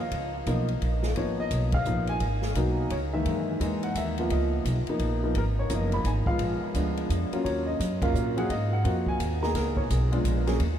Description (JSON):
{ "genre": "jazz piano trio", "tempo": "172 BPM", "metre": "3/4", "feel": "swing 63% on 8ths", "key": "Db mixolydian", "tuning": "A4 = 440 Hz", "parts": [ { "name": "warm grand piano", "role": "melody", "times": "0.0-10.6 s", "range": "Eb3 to Cb6", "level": "-28 LUFS", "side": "equal", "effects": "lush chorus, diffuse ambient delay" }, { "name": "upright bass", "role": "bass", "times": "0.0-10.8 s", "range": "Gb1 to Bb2", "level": "-28 LUFS", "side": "equal", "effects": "none" }, { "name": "open jazz drum kit", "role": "drums", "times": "0.1-10.7 s", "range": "hi-hat, kick drum, ride cymbal, snare drum", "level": "-34 LUFS", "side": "equal", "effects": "none" } ], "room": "moderate huge ambient reverb, RT60 7.6 s", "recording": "dreamy mix soaked in reverb", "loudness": "-24 LUFS", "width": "side -10 dB against mid", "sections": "0.0-10.8 A section", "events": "band accent 1.7, 8.0", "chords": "0.0 Db13; 2.2 Abm7; 2.9 Dbsus2; 3.3 Gb13; 4.3 Db13; 6.4 Bb7b9; 7.4 Ebm7; 8.5 Ab13; 9.5 Db7sus2; 10.2 Bb7b9" }